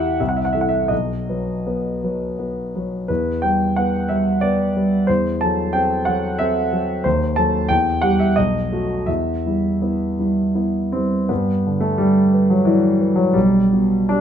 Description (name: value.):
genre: classical, romantic character piece for solo piano.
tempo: 75-93 BPM.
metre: 3/4.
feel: rubato.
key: E minor.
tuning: A4 = 436 Hz.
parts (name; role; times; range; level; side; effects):
warm concert grand piano; solo; 0.0-14.2 s; B1 to A5; -17 LUFS; equal; none.
room: moderate large studio reverb, RT60 1.2 s.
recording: minimal, uncompressed stereo recording.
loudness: -17 LUFS.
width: side -8 dB against mid.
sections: 0.0-11.3 A section; 11.3-14.2 B section.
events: none.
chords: 0.2 C6; 0.9 B; 3.1 Em; 5.1 F#m7b5/E; 7.1 D#dim7; 7.7 Em; 8.4 B7; 9.1 Em; 11.3 G; 13.3 G/B.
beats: 0.20 | 0.91 1.67 2.40 | 3.10 3.77 4.42 | 5.08 5.74 6.39 | 7.05 7.70 8.37 | 9.08 9.81 10.55 | 11.30 12.00 12.68 | 13.35 14.10.